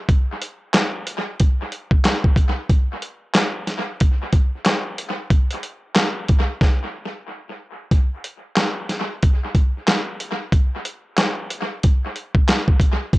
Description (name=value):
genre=hip hop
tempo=92 BPM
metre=4/4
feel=swing 61% on 16ths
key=none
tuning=none
part: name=dusty soul sampler-style drum kit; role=drums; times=0.1-13.2 s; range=handclaps, hi-hat, kick drum, snare drum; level=-17 LUFS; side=equal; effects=vintage 12-bit sampler grit, dub echo
room=moderate spring reverb, RT60 1.4 s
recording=echo-heavy mix, cassette tape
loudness=-18 LUFS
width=side -20 dB against mid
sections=0.0-7.9 A section; 7.9-13.2 B section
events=stop 6.6-7.9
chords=none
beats=| 0.09 0.74 1.39 2.04 | 2.70 3.35 4.00 4.65 | 5.31 5.96 6.61 7.26 | 7.92 8.57 9.22 9.87 | 10.52 11.18 11.83 12.48 | 13.13